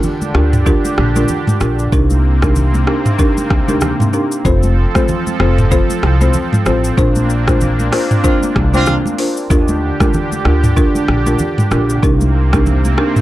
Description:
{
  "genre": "afrobeats",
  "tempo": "95 BPM",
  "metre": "4/4",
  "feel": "swing 58% on 16ths",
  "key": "unclear",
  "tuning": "A4 = 439 Hz",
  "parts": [
    { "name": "folk marimba with medium mallets", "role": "accompaniment", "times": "0.0-13.2 s", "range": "C4 to C5", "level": "-18 LUFS", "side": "equal", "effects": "none" },
    { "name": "warm analog pad", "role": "sustained chords", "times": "0.0-13.2 s", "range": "C3 to A4", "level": "-21 LUFS", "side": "right 1 dB", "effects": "chorus, tremolo" },
    { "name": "afro-pop drum kit", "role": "drums", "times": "0.0-13.2 s", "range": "hi-hat, kick drum, rim click, shaker, toms", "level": "-16 LUFS", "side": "equal", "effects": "none" },
    { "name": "congas", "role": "percussion", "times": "0.0-13.0 s", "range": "none", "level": "-22 LUFS", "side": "right 1 dB", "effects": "none" },
    { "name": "upright bass", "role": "bass", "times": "0.3-12.9 s", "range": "F1 to Eb2", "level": "-14 LUFS", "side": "equal", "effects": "none" },
    { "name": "warm horn section", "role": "second line", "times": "8.2-8.9 s", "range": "C4 to F4", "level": "-20 LUFS", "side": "right 1 dB", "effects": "none" }
  ],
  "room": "light reverb, small room reverb",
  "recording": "dark, warm production",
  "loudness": "-11 LUFS",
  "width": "side -15 dB against mid",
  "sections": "0.0-13.2 A section",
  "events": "band accent 7.0-9.5",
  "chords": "0.0 Ebmaj7 (rootless); 1.9 Cm7; 4.5 F; 7.0 Bbadd9; 9.5 Ebmaj7; 12.0 Cm7",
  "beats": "0.03 0.66 1.29 | 1.93 2.56 3.19 3.82 | 4.45 5.08 5.71 6.35 | 6.98 7.61 8.24 8.87 | 9.50 10.14 10.77 11.40 | 12.03 12.66"
}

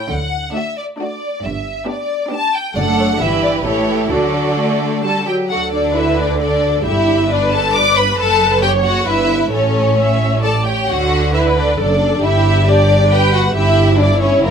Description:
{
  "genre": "quick classical-period movement for string orchestra",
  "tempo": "134 BPM",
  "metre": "3/4",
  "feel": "straight",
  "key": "D major",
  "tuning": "A4 = 440 Hz",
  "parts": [
    { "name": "rich studio violin section", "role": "melody", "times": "0.0-14.5 s", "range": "A#4 to D6", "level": "-18 LUFS", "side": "left 2 dB", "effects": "none" },
    { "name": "rich studio cello section", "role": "bass", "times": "0.1-14.5 s", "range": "F#2 to D3", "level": "-21 LUFS", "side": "right 2 dB", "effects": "none" },
    { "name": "rich studio double bass section", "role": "bass", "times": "0.1-14.5 s", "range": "F#1 to D2", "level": "-20 LUFS", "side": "right 2 dB", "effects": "none" },
    { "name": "rich studio viola section", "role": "accompaniment", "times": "0.5-14.5 s", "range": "E3 to E5", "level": "-20 LUFS", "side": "right 1 dB", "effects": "none" },
    { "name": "clear studio violin section", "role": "second line", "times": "0.6-14.5 s", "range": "A#3 to D5", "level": "-19 LUFS", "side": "equal", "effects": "none" }
  ],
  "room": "light reverb",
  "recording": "minimal, uncompressed stereo recording",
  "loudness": "-13 LUFS",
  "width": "side -7 dB against mid",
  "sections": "0.0-5.5 A section; 5.5-14.5 A section",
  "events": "none",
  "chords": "0.1 D; 1.4 G; 2.8 D/F#; 3.2 Em/G; 3.7 A7; 4.1 D; 5.5 D5; 6.9 G; 8.2 F#madd11; 9.1 Em/G; 9.5 A; 10.9 D; 12.2 G",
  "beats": "| 0.11 0.55 1.00 | 1.44 1.89 2.33 | 2.76 3.20 3.66 | 4.12 4.59 5.05 | 5.51 5.96 6.42 | 6.86 7.31 7.75 | 8.19 8.63 9.07 | 9.52 9.98 10.43 | 10.88 11.33 11.78 | 12.23 12.67 13.12 | 13.56 13.99 14.44"
}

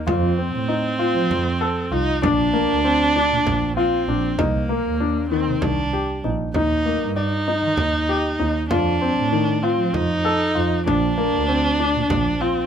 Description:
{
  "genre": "contemporary instrumental, chamber music in an uneven meter",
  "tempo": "194 BPM (eighths)",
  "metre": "7/8",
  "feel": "straight",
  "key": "unclear",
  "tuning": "A4 = 439 Hz",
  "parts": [
    { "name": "warm viola", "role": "second line", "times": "0.0-12.7 s", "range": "Bb3 to Eb4", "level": "-22 LUFS", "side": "right 2 dB", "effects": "none" },
    { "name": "warm baby grand piano", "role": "arpeggios", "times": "0.1-12.6 s", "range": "Eb3 to D5", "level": "-22 LUFS", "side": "left 4 dB", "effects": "none" },
    { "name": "warm double bass", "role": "bass", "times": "0.1-12.3 s", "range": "Bb1 to F3", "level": "-24 LUFS", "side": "right 3 dB", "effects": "none" },
    { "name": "frame drum", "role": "percussion", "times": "0.1-12.4 s", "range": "none", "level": "-26 LUFS", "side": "right 2 dB", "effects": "none" }
  ],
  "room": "light reverb",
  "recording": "none",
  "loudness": "-18 LUFS",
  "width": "side -8 dB against mid",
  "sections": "0.0-12.7 A section",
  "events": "none",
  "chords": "0.1 F; 2.2 Bbadd9; 4.4 Cm7; 6.5 Eb; 8.7 F7; 10.9 Bbadd9",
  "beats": "| 0.07 0.38 0.69 0.99 1.30 1.61 1.92 | 2.23 2.54 2.84 3.15 3.46 3.77 4.08 | 4.39 4.70 5.00 5.31 5.62 5.93 6.24 | 6.55 6.86 7.16 7.47 7.78 8.09 8.40 | 8.71 9.02 9.32 9.63 9.94 10.25 10.56 | 10.87 11.17 11.48 11.79 12.10 12.41"
}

